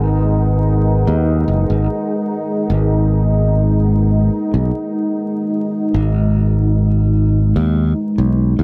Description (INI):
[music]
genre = ambient dub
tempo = 74 BPM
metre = 4/4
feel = swing 54% on 16ths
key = G# minor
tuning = A4 = 442 Hz
[part]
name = deep dark ambient pad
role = sustained chords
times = 0.0-8.6 s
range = G#3 to F#5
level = -21 LUFS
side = equal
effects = chorus, built-in reverb
[part]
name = modern bright fingered electric bass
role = bass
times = 0.0-8.6 s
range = F#1 to D#2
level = -16 LUFS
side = equal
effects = none
[sound]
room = wet huge ambient reverb, RT60 8.0 s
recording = dreamy mix soaked in reverb, vinyl crackle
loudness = -16 LUFS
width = mono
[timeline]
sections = 0.0-8.6 A section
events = none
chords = 0.0 G#m7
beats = 0.27 1.08 1.89 | 2.70 3.51 4.32 5.13 | 5.94 6.75 7.56 8.38